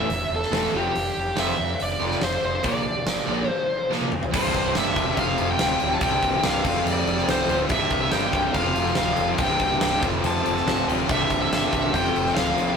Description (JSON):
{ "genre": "hard rock", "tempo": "142 BPM", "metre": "4/4", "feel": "straight", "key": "unclear", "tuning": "A4 = 440 Hz", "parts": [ { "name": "high-gain lead guitar", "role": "melody", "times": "0.0-12.8 s", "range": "G4 to A5", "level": "-25 LUFS", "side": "left 1 dB", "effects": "distortion, tape echo" }, { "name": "cranked stack guitar", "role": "riff", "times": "0.0-12.8 s", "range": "C2 to Bb3", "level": "-28 LUFS", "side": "right 7 dB", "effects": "overdrive" }, { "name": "overdriven electric guitar", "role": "riff", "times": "0.0-12.8 s", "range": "C2 to Bb3", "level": "-27 LUFS", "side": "left 5 dB", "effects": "tremolo" }, { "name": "fuzz fingered electric bass", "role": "bass", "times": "0.1-12.7 s", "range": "C1 to F2", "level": "-31 LUFS", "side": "equal", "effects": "overdrive" }, { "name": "huge arena drum kit", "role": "drums", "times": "0.1-12.7 s", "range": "crash cymbal, hi-hat, kick drum, snare drum, toms", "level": "-26 LUFS", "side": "equal", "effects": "none" } ], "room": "moderate stone room reverb, RT60 1.0 s", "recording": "rough rehearsal-room recording, tube saturation", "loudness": "-20 LUFS", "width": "side -6 dB against mid", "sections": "0.0-4.3 A section; 4.3-12.8 B section", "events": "drum fill 3.9-4.3", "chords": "0.0 A5/E; 0.7 Fsus2; 2.6 Bb; 4.3 C; 5.2 F5; 6.0 C5; 6.6 F5; 7.7 C5; 8.5 F5; 9.4 C5; 10.0 F; 11.1 C; 11.9 F5", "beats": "0.10 0.52 | 0.95 1.37 1.79 2.22 | 2.64 3.06 3.48 3.91 | 4.33 4.75 5.17 5.59 | 6.01 6.44 6.86 7.28 | 7.70 8.12 8.54 8.97 | 9.39 9.81 10.23 10.66 | 11.08 11.50 11.92 12.35" }